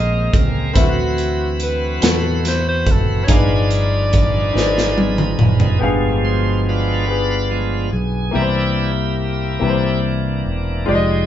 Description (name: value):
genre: slow gospel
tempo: 47 BPM (dotted quarters)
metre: 6/8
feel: straight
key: unclear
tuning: A4 = 440 Hz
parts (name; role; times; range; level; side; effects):
- breathy alto saxophone; melody; 0.0-5.4 s; F#4 to Eb5; -23 LUFS; equal; none
- clear grand piano; accompaniment; 0.0-11.3 s; G2 to F#5; -22 LUFS; left 3 dB; none
- bright tonewheel organ; sustained chords; 0.0-11.3 s; B2 to C5; -23 LUFS; right 1 dB; slow rotary speaker, overdrive
- fingered electric bass; bass; 0.0-11.3 s; E1 to E2; -20 LUFS; equal; none
- modern studio drum kit; drums; 0.3-5.8 s; hi-hat, kick drum, snare drum, toms; -17 LUFS; right 1 dB; none
room: wet studio ambience, RT60 0.5 s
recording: band playing live in one room, nothing above 7.7 kHz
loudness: -15 LUFS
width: side -11 dB against mid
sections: 0.0-5.8 A section; 5.8-11.3 B section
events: drum fill 4.6-5.8; tonewheel organ solo 5.8-11.3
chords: 0.0 Abmaj9; 0.8 D13; 3.3 G7b9b13; 5.8 G7b9; 8.4 C7